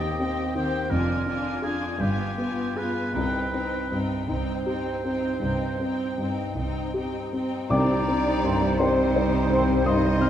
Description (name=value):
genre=classical, romantic movement for piano and orchestra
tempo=52-58 BPM (dotted quarters)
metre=12/8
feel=rubato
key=C minor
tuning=A4 = 440 Hz
part: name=rich studio violin section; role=melody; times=0.0-10.3 s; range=C5 to Ab5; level=-37 LUFS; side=left 7 dB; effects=none
part: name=warm grand piano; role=melody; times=0.0-10.3 s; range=C2 to F6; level=-27 LUFS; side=left 1 dB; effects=none
part: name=warm oboe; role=second line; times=0.0-10.3 s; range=G4 to Eb5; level=-32 LUFS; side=right 2 dB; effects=none
part: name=warm studio violin section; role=second line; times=0.0-10.3 s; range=Eb4 to Eb5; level=-33 LUFS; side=left 4 dB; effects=none
part: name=warm studio viola section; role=accompaniment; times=0.0-10.3 s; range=Eb3 to Eb4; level=-34 LUFS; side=right 1 dB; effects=none
part: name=rich studio cello section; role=bass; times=0.0-10.3 s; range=Eb2 to C3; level=-33 LUFS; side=right 4 dB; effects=none
part: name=rich studio double bass section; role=bass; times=0.0-10.3 s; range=F1 to Eb2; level=-32 LUFS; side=right 3 dB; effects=none
part: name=bright concert flute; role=second line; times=7.7-10.3 s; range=G5 to C6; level=-32 LUFS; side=left 2 dB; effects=none
part: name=mellow clarinet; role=second line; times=7.7-10.3 s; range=Eb4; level=-32 LUFS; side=right 2 dB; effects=none
part: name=warm bassoon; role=accompaniment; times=7.7-10.3 s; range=G3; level=-31 LUFS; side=right 1 dB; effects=none
part: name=mellow French horn section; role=sustained chords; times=7.7-10.3 s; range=C4 to Eb4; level=-29 LUFS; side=left 4 dB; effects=none
part: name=mellow tuba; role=bass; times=7.7-10.3 s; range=C2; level=-33 LUFS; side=right 4 dB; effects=none
part: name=timpani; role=percussion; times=7.7-8.8 s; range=C3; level=-33 LUFS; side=equal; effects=none
part: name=bright trombone section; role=sustained chords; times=8.4-9.6 s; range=Eb3 to C4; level=-35 LUFS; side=right 2 dB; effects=none
part: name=dark trumpet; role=stabs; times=8.4-9.6 s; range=C5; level=-34 LUFS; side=right 1 dB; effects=none
room=wet concert hall reverb, RT60 1.9 s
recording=dark, warm production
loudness=-23 LUFS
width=side -10 dB against mid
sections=0.0-7.7 A section; 7.7-10.3 A section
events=none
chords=0.0 Cm/Eb; 0.9 Ddim/F; 2.0 G7b9; 3.2 Cm